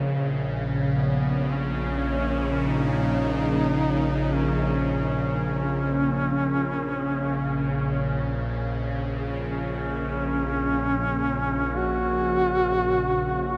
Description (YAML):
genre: dark ambient drone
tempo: free time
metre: none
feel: none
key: Bb minor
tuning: A4 = 440 Hz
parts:
  - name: bowed-like drone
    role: drone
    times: 0.0-13.6 s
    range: Bb1 to Db3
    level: -27 LUFS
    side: equal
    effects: built-in reverb, phaser
  - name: warm duduk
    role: melody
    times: 0.9-13.6 s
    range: Cb4 to Gb4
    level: -29 LUFS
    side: equal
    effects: diffuse ambient delay
room: wet huge ambient reverb, RT60 8.6 s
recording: in a vast, echoing space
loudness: -25 LUFS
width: mono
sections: 0.0-13.6 A section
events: fade-in on duduk 0.0-13.6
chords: 0.0 Bbm